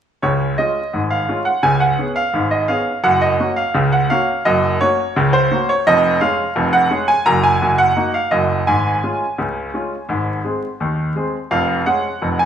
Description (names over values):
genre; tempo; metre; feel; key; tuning
ragtime piano; 85 BPM; 2/4; straight; Db major; A4 = 440 Hz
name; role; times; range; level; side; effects
bright grand piano; solo; 0.2-12.5 s; F1 to Bb5; -15 LUFS; right 1 dB; none
room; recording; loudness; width
moderate large studio reverb, RT60 1.2 s; band playing live in one room, vinyl crackle; -15 LUFS; side -8 dB against mid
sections
0.2-12.5 A section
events
none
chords
0.2 Db; 1.6 Db5; 3.1 Gb; 5.9 Db/F; 7.3 Ebm/Gb; 8.7 Db/Ab; 10.1 Ab; 11.5 Db/F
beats
| 0.23 0.94 | 1.64 2.35 | 3.06 3.76 | 4.46 5.16 | 5.86 6.56 | 7.27 7.97 | 8.68 9.39 | 10.10 10.81 | 11.52 12.22